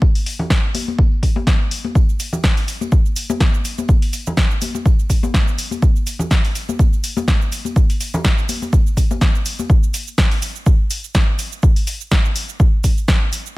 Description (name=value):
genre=house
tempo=124 BPM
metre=4/4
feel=swing 55% on 16ths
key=none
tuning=none
part: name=electronic kick drum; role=drums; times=0.0-13.2 s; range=none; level=-14 LUFS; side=equal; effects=none
part: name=tambourine and congas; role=percussion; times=0.0-9.7 s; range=none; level=-26 LUFS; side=left 3 dB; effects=sidechain pumping on perc, low-pass filter on perc
part: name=punchy analog drum machine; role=drums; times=0.2-13.5 s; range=hi-hat, shaker, snare drum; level=-23 LUFS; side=equal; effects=sidechain pumping on hats, sidechain pumping on perc
room=digital ambience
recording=none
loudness=-15 LUFS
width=side -20 dB against mid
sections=0.0-9.7 A section; 9.7-13.6 B section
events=drop 9.7-13.6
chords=none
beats=| 0.02 0.50 0.99 1.47 | 1.96 2.44 2.92 3.41 | 3.89 4.38 4.86 5.34 | 5.83 6.31 6.79 7.28 | 7.76 8.25 8.73 9.21 | 9.70 10.18 10.66 11.15 | 11.63 12.12 12.60 13.08